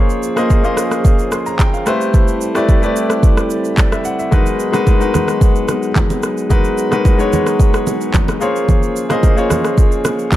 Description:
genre	amapiano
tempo	110 BPM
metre	4/4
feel	straight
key	G# dorian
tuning	A4 = 440 Hz
part	clear concert grand piano	accompaniment	0.0-10.4 s	G#3 to B#5	-17 LUFS	left 2 dB	none
part	dark French horn section	sustained chords	0.0-10.4 s	E#3 to A4	-22 LUFS	right 2 dB	sidechain pumping
part	afro-pop drum kit	drums	0.1-10.4 s	handclaps, kick drum, rim click, shaker	-14 LUFS	equal	none
part	congas and bongos	percussion	4.3-10.4 s	none	-22 LUFS	right 3 dB	none
room	studio ambience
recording	dark, warm production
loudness	-12 LUFS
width	side -14 dB against mid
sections	0.0-10.4 A section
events	none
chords	0.0 A#m7; 1.9 Am7; 4.3 G#m7; 8.4 A#m7

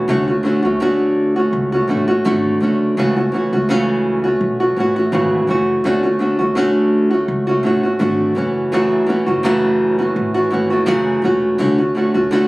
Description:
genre	acoustic pop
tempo	83 BPM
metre	4/4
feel	swing 55% on 16ths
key	unclear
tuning	A4 = 440 Hz
part	nylon-string guitar	accompaniment	0.0-12.5 s	F#2 to F#4	-14 LUFS	equal	none
part	upright bass	bass	0.0-12.5 s	E1 to D2	-25 LUFS	equal	none
room	light reverb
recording	recorded on a phone in the room, club reverb, compression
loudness	-14 LUFS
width	side -20 dB against mid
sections	0.0-12.5 A section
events	none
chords	0.1 Dmaj7; 3.0 A6/C#; 5.8 Dmaj7; 8.4 F#m7; 11.6 Dmaj7

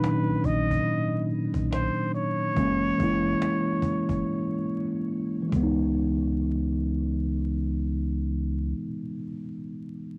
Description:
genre	lo-fi hip hop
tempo	71 BPM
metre	4/4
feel	swing 60% on 16ths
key	C# dorian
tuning	A4 = 440 Hz
part	trumpet with straight mute	melody	0.0-5.1 s	B4 to D#5	-34 LUFS	equal	low-pass filter, cassette tape
part	mellow tine electric piano	accompaniment	0.0-10.2 s	A#2 to E4	-29 LUFS	equal	low-pass filter
part	cajon	drums	0.0-5.8 s	none	-35 LUFS	equal	cassette tape
part	sub bass with octave	bass	0.3-8.7 s	F#1 to C#2	-32 LUFS	equal	none
room	moderate booth ambience, RT60 0.2 s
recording	home recording on cassette, vinyl crackle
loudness	-27 LUFS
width	mono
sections	0.0-5.9 A section; 5.9-9.3 B section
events	break 4.3-5.9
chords	0.0 Bmaj7; 2.6 F#7; 5.5 C#m7

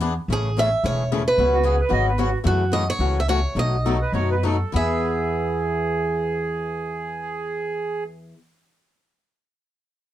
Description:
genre	acoustic string swing (jazz manouche)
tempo	190-223 BPM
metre	4/4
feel	swing 58% on 8ths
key	E major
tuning	A4 = 441 Hz
part	picked swing-style acoustic guitar	accompaniment	0.0-8.4 s	B2 to G#4	-26 LUFS	left 5 dB	none
part	upright bass	bass	0.0-8.3 s	E1 to F#2	-24 LUFS	equal	none
part	picked swing-style acoustic guitar	melody	0.3-8.3 s	F#4 to E5	-24 LUFS	right 2 dB	none
part	accordion	second line	1.5-8.0 s	F#4 to D#5	-26 LUFS	right 5 dB	none
room	light reverb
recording	dark, warm production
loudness	-20 LUFS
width	side -12 dB against mid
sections	0.3-4.7 A section; 4.7-7.3 B section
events	slowing down 2.5-4.7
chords	0.3 Amaj7; 1.4 C#7sus4; 2.5 F#m7; 3.5 B7; 4.7 E

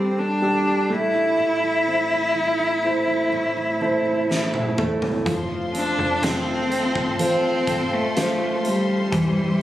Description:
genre	pop ballad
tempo	62 BPM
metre	4/4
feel	straight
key	unclear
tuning	A4 = 438 Hz
part	rich cello	melody	0.0-9.6 s	G3 to E4	-22 LUFS	left 1 dB	tape echo
part	warm concert grand piano	accompaniment	0.0-9.6 s	E3 to C5	-25 LUFS	right 1 dB	none
part	fingerpicked steel-string acoustic guitar	arpeggios	0.0-9.6 s	A2 to A4	-27 LUFS	right 2 dB	tape echo
part	huge arena drum kit	drums	4.3-9.3 s	hi-hat, kick drum, snare drum, toms	-29 LUFS	equal	none
part	warm studio string section	sustained chords	5.3-9.6 s	G4 to C6	-30 LUFS	equal	none
part	slap-like FM bass	bass	5.3-9.6 s	E1 to F1	-34 LUFS	equal	none
room	light reverb, small room ambience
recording	recorded on a phone in the room, studio reverb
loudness	-19 LUFS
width	side -13 dB against mid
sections	0.0-9.6 A section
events	drum fill 4.3-5.3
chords	0.0 Gsus2; 0.9 Am; 5.3 F

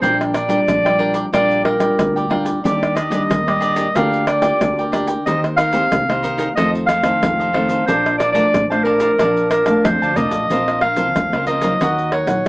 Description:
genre	samba and choro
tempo	92 BPM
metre	4/4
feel	straight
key	Bb major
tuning	A4 = 440 Hz
part	warm clarinet	melody	0.0-12.4 s	Bb4 to F5	-17 LUFS	equal	none
part	cavaquinho	accompaniment	0.0-12.5 s	D4 to A5	-23 LUFS	right 1 dB	none
part	nylon-string guitar	accompaniment	0.0-12.5 s	F2 to G4	-22 LUFS	left 1 dB	none
part	woody fretless electric bass	bass	0.0-12.5 s	Bb1 to F2	-27 LUFS	equal	ensemble chorus
part	tube shaker, surdo, pandeiro and tamborim	percussion	0.0-12.5 s	none	-22 LUFS	equal	none
room	wet booth ambience, RT60 0.2 s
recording	heard from further back in the room, AM radio sound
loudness	-14 LUFS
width	side -25 dB against mid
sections	0.0-10.5 A section; 10.5-12.5 B section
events	drum fill 9.8-10.5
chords	0.0 Bb6; 2.6 Ebmaj7; 4.0 Bb6/D; 5.3 Cm7/Eb; 6.6 F7; 7.9 Bbmaj7; 10.5 Bbsus2; 11.8 Ebm

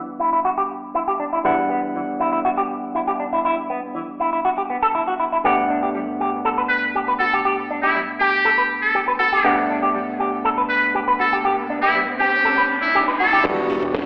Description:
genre	nu-disco, nu disco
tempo	120 BPM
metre	4/4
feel	straight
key	unclear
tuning	A4 = 440 Hz
part	barky tine electric piano	accompaniment	0.0-14.1 s	E2 to F#5	-28 LUFS	equal	sidechain pumping, low-pass filter, tape echo
part	electric guitar with an envelope filter	riff	0.2-13.4 s	E3 to B4	-23 LUFS	equal	lush chorus, vintage 12-bit sampler grit, low-pass filter, tape echo
part	muted trumpet section	melody	6.7-13.4 s	E4 to B4	-21 LUFS	equal	tape echo
part	riser and impact	sound effects	10.9-14.1 s	none	-32 LUFS	equal	none
part	soft round pluck	arpeggios	13.4-14.0 s	D3 to G3	-38 LUFS	equal	none
part	house drum kit	drums	13.4-14.1 s	crash cymbal, hi-hat, snare drum	-31 LUFS	equal	overdrive, low-pass filter on hats, low-pass filter on snare, low-pass filter on cymbals, low-pass filter on room
part	congas	percussion	13.4-13.5 s	none	-40 LUFS	equal	none
part	chorused synth bass	bass	13.5-14.0 s	E1 to E2	-32 LUFS	equal	sidechain pumping
part	kick drum	drums	13.5-14.1 s	none	-32 LUFS	equal	none
room	wet plate reverb, RT60 1.3 s, small room ambience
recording	played on a big sound system in a bare room, large studio reverb, telephone sound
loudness	-20 LUFS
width	mono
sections	0.0-13.4 A section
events	filter sweep on tine electric piano 0.0-13.4; riser 10.9-13.4; impact 13.4-14.1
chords	0.0 Em7; 5.4 Gmaj9; 13.4 Em7

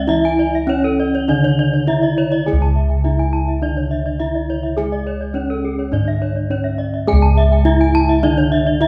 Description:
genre	gamelan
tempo	104 BPM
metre	4/4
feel	straight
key	C# pelog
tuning	A4 = 440 Hz
part	gamelan-type bronze metallophone	melody	0.0-8.9 s	C#4 to G#4	-22 LUFS	equal	none
part	gamelan-type bronze metallophone	accompaniment	0.0-8.9 s	D3+35c to G#3	-27 LUFS	equal	none
part	gamelan-type bronze metallophone	arpeggios	0.0-8.5 s	G#4 to A5	-28 LUFS	equal	none
part	gamelan-type bossed gongs	bass	0.0-8.9 s	C#2 to G#4	-20 LUFS	equal	none
part	gamelan-type bronze metallophone	arpeggios	0.1-8.9 s	C#5 to G#5	-26 LUFS	equal	none
room	wet recital hall reverb, RT60 1.4 s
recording	recorded in a church or concert hall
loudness	-17 LUFS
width	mono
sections	0.0-2.5 A section; 2.5-8.9 B section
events	none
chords	none

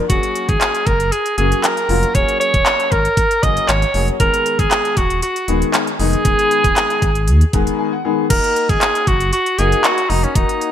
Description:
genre	dance-pop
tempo	117 BPM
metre	4/4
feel	straight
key	Eb minor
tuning	A4 = 442 Hz
part	clear baby grand piano	accompaniment	0.0-10.7 s	Eb3 to Bb5	-22 LUFS	left 5 dB	lush chorus, sidechain pumping
part	bright alto saxophone	melody	0.1-10.7 s	Db4 to Eb5	-17 LUFS	right 1 dB	ping-pong delay
part	sub bass with octave	bass	0.1-10.4 s	Eb1 to Eb2	-18 LUFS	equal	sidechain pumping
part	pop drum kit	drums	0.1-10.7 s	crash cymbal, handclaps, hi-hat, kick drum	-18 LUFS	equal	gated reverb
room	light reverb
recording	bright 1980s-style digital production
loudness	-13 LUFS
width	side -10 dB against mid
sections	0.0-8.3 A section; 8.3-10.7 A section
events	grand piano fill 7.3-8.3; break 7.8-8.3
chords	0.1 Gbadd9/Eb; 4.2 Abm/Eb; 8.3 Ebm

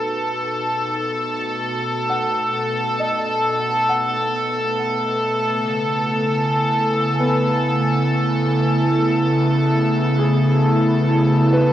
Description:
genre	ambient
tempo	67 BPM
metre	3/4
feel	straight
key	B mixolydian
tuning	A4 = 441 Hz
part	warbly tape-like pad	sustained chords	0.0-11.7 s	B2 to G#5	-20 LUFS	equal	chorus, built-in reverb, cassette tape, shimmer reverb
part	felt-muted upright piano	arpeggios	0.0-11.7 s	B3 to F#5	-29 LUFS	equal	cassette tape, analog delay, shimmer reverb
part	bowed-like drone	drone	0.0-11.7 s	B3	-31 LUFS	right 1 dB	built-in reverb, cassette tape
part	clear studio violin section	texture	0.0-11.7 s	A4	-21 LUFS	left 1 dB	cassette tape, shimmer reverb
room	wet spring reverb, RT60 2.4 s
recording	home recording on cassette, nothing above 10.4 kHz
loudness	-17 LUFS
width	side -12 dB against mid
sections	0.0-11.7 A section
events	fade-in on ambient pad 0.0-11.7; fade-in on felt piano 0.0-11.7; fade-in on synth drone 0.0-11.7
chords	0.0 B7; 5.4 Amaj7

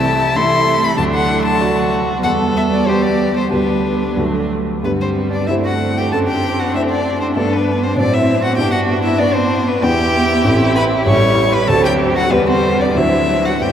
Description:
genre	quick classical-period movement for piano quintet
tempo	90-99 BPM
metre	2/4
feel	rubato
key	G major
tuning	A4 = 440 Hz
part	clear violin	melody	0.0-13.7 s	A4 to C#6	-19 LUFS	left 3 dB	none
part	dark cello	second line	0.0-13.7 s	E3 to C#5	-20 LUFS	right 3 dB	none
part	warm violin	second line	0.0-13.7 s	B3 to A4	-22 LUFS	left 1 dB	none
part	warm grand piano	accompaniment	0.0-13.7 s	A1 to E5	-18 LUFS	equal	none
part	warm viola	accompaniment	0.0-13.7 s	F#3 to C4	-22 LUFS	right 3 dB	none
room	wet cathedral reverb, RT60 6.1 s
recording	in a vast, echoing space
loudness	-13 LUFS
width	side -9 dB against mid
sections	0.0-4.8 A section; 4.8-13.7 B section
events	none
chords	0.0 Am/C; 1.0 D; 2.2 Em; 3.5 G/D; 4.2 D; 4.8 G; 5.5 Am7/G; 6.1 D7/F#; 7.4 G; 8.0 F#dim/A; 8.6 G; 9.8 Em; 10.4 Am7; 11.1 A7; 11.7 D7; 12.3 Em; 13.0 D7

